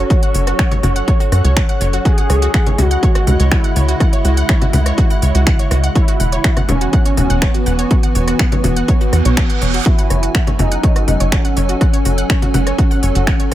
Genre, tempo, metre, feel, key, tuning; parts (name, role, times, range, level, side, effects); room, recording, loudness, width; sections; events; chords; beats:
melodic techno; 123 BPM; 4/4; straight; F# dorian; A4 = 439 Hz
expressive synth lead; melody; 0.0-13.5 s; B3 to C#5; -21 LUFS; right 1 dB; ensemble chorus, vintage 12-bit sampler grit, sidechain pumping, dub echo
evolving wavetable pad; sustained chords; 0.0-13.5 s; C#3 to G#5; -25 LUFS; right 1 dB; chorus, built-in reverb, sidechain pumping
wide unison pluck; arpeggios; 0.0-13.5 s; F#4 to F#6; -24 LUFS; right 1 dB; sidechain pumping, analog delay
tight sequencer bass; bass; 0.0-13.5 s; E1 to F#2; -15 LUFS; equal; sidechain pumping
deep house drum kit; drums; 0.1-13.5 s; congas, finger snaps, hi-hat, rim click; -21 LUFS; left 1 dB; sidechain pumping on hats, sidechain pumping on cymbals, sidechain pumping on perc, dub echo
electronic kick drum; drums; 0.1-13.4 s; -14 LUFS; equal; overdrive
reverse cymbal; sound effects; 9.1-9.9 s; -24 LUFS; right 7 dB
digital ambience; echo-heavy mix; -12 LUFS; side -13 dB against mid
0.0-13.5 A section
reverse cymbal 9.1-9.9
0.0 F#m; 2.1 C#m; 6.0 E; 9.9 F#m
| 0.10 0.59 1.08 1.56 | 2.05 2.54 3.03 3.52 | 4.00 4.49 4.98 5.47 | 5.96 6.44 6.93 7.42 | 7.91 8.39 8.88 9.37 | 9.86 10.35 10.83 11.32 | 11.81 12.30 12.78 13.27